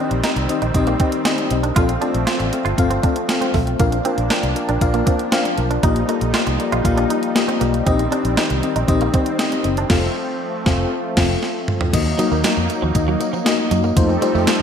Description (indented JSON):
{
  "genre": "1980s-style pop",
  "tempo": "118 BPM",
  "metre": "4/4",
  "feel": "straight",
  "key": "unclear",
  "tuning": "A4 = 440 Hz",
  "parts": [
    { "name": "FM electric piano with tremolo", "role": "accompaniment", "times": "0.0-14.6 s", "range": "A3 to A5", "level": "-21 LUFS", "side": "left 4 dB", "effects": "none" },
    { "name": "lush unison pad", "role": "sustained chords", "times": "0.0-14.6 s", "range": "Eb3 to A4", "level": "-25 LUFS", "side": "right 1 dB", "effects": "chorus" },
    { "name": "direct-recorded clean electric guitar", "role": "riff", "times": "0.0-14.6 s", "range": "F3 to F4", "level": "-25 LUFS", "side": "right 5 dB", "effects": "ensemble chorus, ping-pong delay" },
    { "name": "vintage muted fingered electric bass", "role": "bass", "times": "0.1-14.4 s", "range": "F1 to Gb2", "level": "-22 LUFS", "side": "right 1 dB", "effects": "none" },
    { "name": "clean 12-bit digital drum machine", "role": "drums", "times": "0.1-14.6 s", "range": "crash cymbal, hi-hat, kick drum, snare drum, toms", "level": "-20 LUFS", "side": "right 1 dB", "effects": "overdrive, gated reverb" },
    { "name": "tambourine", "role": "percussion", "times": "11.9-14.6 s", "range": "none", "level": "-36 LUFS", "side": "right 9 dB", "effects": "none" }
  ],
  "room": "wet lush hall reverb, RT60 1.6 s",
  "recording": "bright 1980s-style digital production",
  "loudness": "-16 LUFS",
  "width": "side -8 dB against mid",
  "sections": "0.0-11.9 A section; 11.9-14.6 B section",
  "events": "FM electric piano fill 2.8-3.8; band accent 9.9-11.9; drum fill 11.4-11.9",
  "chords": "0.0 Cm/Bb; 1.8 F; 3.8 Bb; 5.8 Ebadd9/Bb; 7.9 Cm/Bb; 9.9 F; 11.9 Ebm; 14.0 F7",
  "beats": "0.24 0.75 1.25 | 1.76 2.27 2.78 3.29 | 3.80 4.31 4.82 5.32 | 5.83 6.34 6.85 7.36 | 7.87 8.37 8.88 9.39 | 9.90 10.41 10.92 11.43 | 11.93 12.44 12.95 13.46 | 13.97 14.48"
}